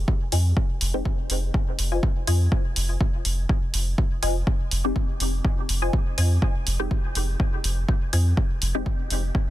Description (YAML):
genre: dub techno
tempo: 123 BPM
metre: 4/4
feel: swing 54% on 16ths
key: F minor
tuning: A4 = 440 Hz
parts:
  - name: filtered dub chord stab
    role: stabs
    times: 0.0-1.1, 4.8-8.9 s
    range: Ab3 to G4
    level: -33 LUFS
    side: left 2 dB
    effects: phaser, vintage 12-bit sampler grit, sidechain pumping, dub echo
  - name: soft dub sub bass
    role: bass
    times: 0.0-9.3 s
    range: F1 to F2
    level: -23 LUFS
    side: equal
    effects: sidechain pumping
  - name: electronic kick drum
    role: drums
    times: 0.1-9.5 s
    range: none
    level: -23 LUFS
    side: equal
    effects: none
  - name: filtered dub chord stab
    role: riff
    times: 0.3-8.3 s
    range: F4 to Ab5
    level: -34 LUFS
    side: left 4 dB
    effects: phaser, sidechain pumping, dub echo
  - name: electronic hi-hat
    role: drums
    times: 0.3-9.2 s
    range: none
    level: -29 LUFS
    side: right 1 dB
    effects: none
room: little or no reverb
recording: dense, heavily limited modern master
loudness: -21 LUFS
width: side -15 dB against mid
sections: 0.0-9.5 A section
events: none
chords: 0.0 Fm7